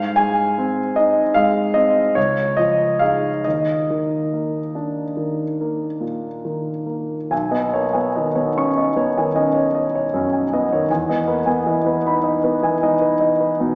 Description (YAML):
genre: classical, impressionist solo piano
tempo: 45-53 BPM (dotted quarters)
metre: 9/8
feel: rubato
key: B major from 7.3 s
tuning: A4 = 438 Hz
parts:
  - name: warm concert grand piano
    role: solo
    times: 0.0-13.8 s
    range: B1 to C#6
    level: -20 LUFS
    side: equal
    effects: none
room: wet concert hall reverb, RT60 1.9 s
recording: heard from further back in the room, small speaker sound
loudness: -20 LUFS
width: mono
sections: 0.0-7.3 A section; 7.3-13.8 B section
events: none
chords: 0.0 Ab; 2.2 Dbadd9; 3.5 Eb5; 7.3 B69; 10.9 Emaj7